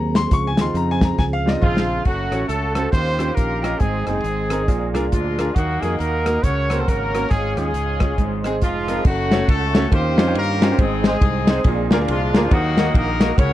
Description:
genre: uptempo gospel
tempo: 138 BPM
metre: 4/4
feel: swing 61% on 8ths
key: unclear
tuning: A4 = 440 Hz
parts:
  - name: clear grand piano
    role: accompaniment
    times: 0.0-13.5 s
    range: Ab2 to Db6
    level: -24 LUFS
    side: right 1 dB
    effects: none
  - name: percussive tonewheel organ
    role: sustained chords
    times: 0.0-13.5 s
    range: Db3 to Eb6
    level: -28 LUFS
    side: right 3 dB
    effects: slow rotary speaker, chorus vibrato
  - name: fingered electric bass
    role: bass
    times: 0.0-13.5 s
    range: F1 to G2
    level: -24 LUFS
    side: equal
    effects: none
  - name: warm soul drum kit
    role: drums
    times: 0.2-13.5 s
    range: crash cymbal, hi-hat, kick drum, ride cymbal, rim click, snare drum, toms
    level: -18 LUFS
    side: equal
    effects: none
  - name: warm horn section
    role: melody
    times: 1.6-13.5 s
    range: F3 to Db5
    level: -25 LUFS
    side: left 3 dB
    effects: none
  - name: warm trumpet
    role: melody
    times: 1.6-9.0 s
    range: F4 to Db5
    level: -26 LUFS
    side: right 3 dB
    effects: none
room: little or no reverb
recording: dry, close 1970s-style studio recording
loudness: -17 LUFS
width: side -13 dB against mid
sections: 0.0-2.1 A section; 2.1-9.1 B section; 9.1-13.5 C section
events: grand piano solo 0.0-2.1; drum fill 1.2-2.1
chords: 0.3 Dbmaj7; 2.1 Gbm; 2.9 Eb13; 3.8 Ab; 4.7 Bb7; 5.6 Ebm; 6.4 Gb/Db; 7.3 Db/Ab; 8.2 Ab; 9.1 Gbm; 9.9 Eb13; 10.8 Ab; 11.7 Bb7; 12.5 Ebm

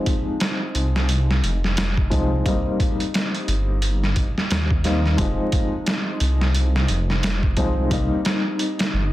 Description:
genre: trip hop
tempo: 88 BPM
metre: 4/4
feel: swing 59% on 16ths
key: F minor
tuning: A4 = 440 Hz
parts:
  - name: dark upright piano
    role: accompaniment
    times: 0.0-9.1 s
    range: F3 to Eb4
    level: -25 LUFS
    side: left 1 dB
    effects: tremolo, low-pass filter, tape echo
  - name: trip hop sampler-style drum kit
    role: drums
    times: 0.1-8.9 s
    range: hi-hat, kick drum, snare drum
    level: -23 LUFS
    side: equal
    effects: none
  - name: dark detuned saw bass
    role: bass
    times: 0.8-9.1 s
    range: F1 to Eb2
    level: -21 LUFS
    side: equal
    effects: none
room: light reverb, digital ambience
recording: dense, heavily limited modern master, vinyl crackle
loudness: -19 LUFS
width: side -15 dB against mid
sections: 0.0-9.1 A section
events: filter sweep on upright piano 0.0-9.1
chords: 0.0 Fm7; 2.5 Cm7; 5.2 Fm7; 7.9 Cm7

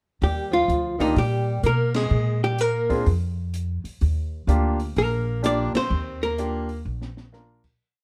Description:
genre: jazz, small-group swing and bop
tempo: 126 BPM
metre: 4/4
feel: swing 65% on 8ths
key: Eb major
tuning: A4 = 440 Hz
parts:
  - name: archtop guitar, miked and amplified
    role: melody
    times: 0.2-6.8 s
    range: Eb4 to D5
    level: -27 LUFS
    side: equal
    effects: none
  - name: breathy tenor saxophone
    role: second line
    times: 0.2-6.8 s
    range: Eb3 to D4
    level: -32 LUFS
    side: equal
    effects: none
  - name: upright bass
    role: bass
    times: 0.2-7.8 s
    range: Bb1 to Cb3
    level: -26 LUFS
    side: equal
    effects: none
  - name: open jazz drum kit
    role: drums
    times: 0.2-7.7 s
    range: crash cymbal, hi-hat, kick drum, ride cymbal, snare drum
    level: -35 LUFS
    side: equal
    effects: none
  - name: clear concert grand piano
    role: accompaniment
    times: 1.0-7.6 s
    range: Bb3 to Bb4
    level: -29 LUFS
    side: equal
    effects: none
room: light reverb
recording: none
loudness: -24 LUFS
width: mono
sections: 0.2-7.8 A section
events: band accent 1.9, 5.7; fade-out 5.9-7.8; drum fill 6.9-7.3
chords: 0.2 Ebmaj9; 2.1 Bb7(no3); 4.0 Ebmaj9

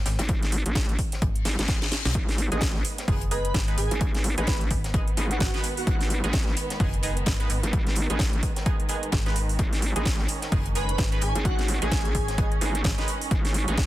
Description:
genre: bass house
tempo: 129 BPM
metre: 4/4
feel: swing 58% on 16ths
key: G# phrygian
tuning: A4 = 440 Hz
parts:
  - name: metallic FM bass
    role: bass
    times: 0.0-13.0 s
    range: F#1 to B1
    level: -28 LUFS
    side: equal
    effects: overdrive, sidechain pumping
  - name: deep reggae drum kit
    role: drums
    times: 0.1-13.9 s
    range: hi-hat, snare drum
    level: -38 LUFS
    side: left 3 dB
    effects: sidechain pumping on hats, high-pass filter on hats, high-pass filter on snare, high-pass filter on room
  - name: house drum kit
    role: drums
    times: 0.1-13.9 s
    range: hi-hat, snare drum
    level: -31 LUFS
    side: right 1 dB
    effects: none
  - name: vowel-sweep wobble bass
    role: bass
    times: 0.2-13.9 s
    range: G#1 to A1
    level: -27 LUFS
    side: equal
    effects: chorus, overdrive, sidechain pumping
  - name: electronic kick drum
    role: drums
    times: 0.3-13.9 s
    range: none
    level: -26 LUFS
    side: equal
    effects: overdrive
  - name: reverse cymbal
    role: sound effects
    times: 1.4-2.1 s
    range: none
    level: -36 LUFS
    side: left 8 dB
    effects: none
  - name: dark chamber string section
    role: sustained chords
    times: 2.1-13.9 s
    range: D#3 to C#4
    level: -36 LUFS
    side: right 3 dB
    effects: sidechain pumping
  - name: band-passed chord stab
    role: stabs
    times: 2.5-13.8 s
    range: G#3 to B4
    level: -35 LUFS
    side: right 2 dB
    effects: chorus, phaser, sidechain pumping, dub echo
  - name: airy dreamy lead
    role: melody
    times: 3.3-6.0, 10.8-12.5 s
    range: F#4 to B4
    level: -33 LUFS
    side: right 1 dB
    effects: chorus, dub echo
room: little or no reverb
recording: dense, heavily limited modern master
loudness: -23 LUFS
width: side -15 dB against mid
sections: 0.0-13.9 A section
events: reverse cymbal 1.4-2.1; drum fill 1.5-2.1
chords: 0.0 G#m

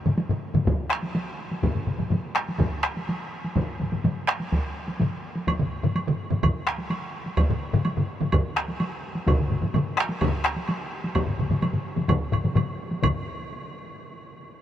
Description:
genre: japanese traditional, taiko drum ensemble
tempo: 126 BPM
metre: 4/4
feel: straight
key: none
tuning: none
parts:
  - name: solo taiko drums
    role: percussion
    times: 0.1-13.3 s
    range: none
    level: -30 LUFS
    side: right 1 dB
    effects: none
  - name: taiko ensemble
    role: percussion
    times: 0.1-13.5 s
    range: none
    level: -29 LUFS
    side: left 3 dB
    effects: none
  - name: taiko ensemble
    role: percussion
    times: 0.1-13.5 s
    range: none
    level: -29 LUFS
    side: right 1 dB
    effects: none
  - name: taiko ensemble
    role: percussion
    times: 0.7-13.3 s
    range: none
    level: -29 LUFS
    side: equal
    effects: none
  - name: woodblock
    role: percussion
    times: 5.5-13.3 s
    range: none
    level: -35 LUFS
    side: right 4 dB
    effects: none
room: moderate huge ambient reverb, RT60 6.8 s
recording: none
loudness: -23 LUFS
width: side -11 dB against mid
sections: 0.0-13.0 A section; 13.0-14.6 B section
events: speeding up 0.0-14.6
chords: none

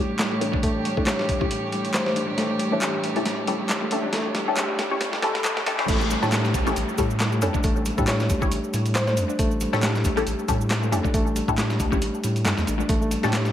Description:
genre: breakbeat, breaks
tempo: 137 BPM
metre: 4/4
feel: swing 56% on 16ths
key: unclear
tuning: A4 = 440 Hz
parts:
  - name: rich chamber string section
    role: sustained chords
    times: 0.0-5.9 s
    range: A2 to C#5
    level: -30 LUFS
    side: right 2 dB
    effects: sidechain pumping, low-pass filter
  - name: reed electric piano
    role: riff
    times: 0.0-13.5 s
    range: G3 to G4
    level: -28 LUFS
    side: left 1 dB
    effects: fast tremolo, low-pass filter, analog delay
  - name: filtered dub chord stab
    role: stabs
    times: 0.0-13.4 s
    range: C#4 to C#5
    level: -28 LUFS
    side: left 2 dB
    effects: phaser, analog chorus, analog delay
  - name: riser, swell and downlifter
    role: sound effects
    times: 1.6-9.4 s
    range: none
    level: -35 LUFS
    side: left 1 dB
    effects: none
  - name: dusty soul sampler-style drum kit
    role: drums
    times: 0.2-13.5 s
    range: crash cymbal, hi-hat, kick drum, snare drum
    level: -26 LUFS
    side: equal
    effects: analog delay
  - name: electronic handclaps and shaker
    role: drums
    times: 0.2-13.5 s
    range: none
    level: -31 LUFS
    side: equal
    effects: none
  - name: thumb-piano-like synth pluck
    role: melody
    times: 1.1-2.1, 8.1-9.1 s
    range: C5 to C#5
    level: -31 LUFS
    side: equal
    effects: chorus, old record sound, analog delay
  - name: saturated sub bass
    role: bass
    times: 5.9-13.5 s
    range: A1 to A2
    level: -26 LUFS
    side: equal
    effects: tube saturation
room: moderate spring reverb, RT60 1.9 s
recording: echo-heavy mix, vinyl crackle, high-pass filter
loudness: -21 LUFS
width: side -11 dB against mid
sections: 0.0-5.9 A section; 5.9-13.5 B section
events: build-up 0.0-5.9; filter sweep on reed electric piano 0.0-5.9; filter sweep on synth stab 0.0-5.9; filter sweep 0.0-5.9; drum fill 2.4-5.9; swell 5.0-5.9; drop 5.9-13.5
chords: 0.0 A7

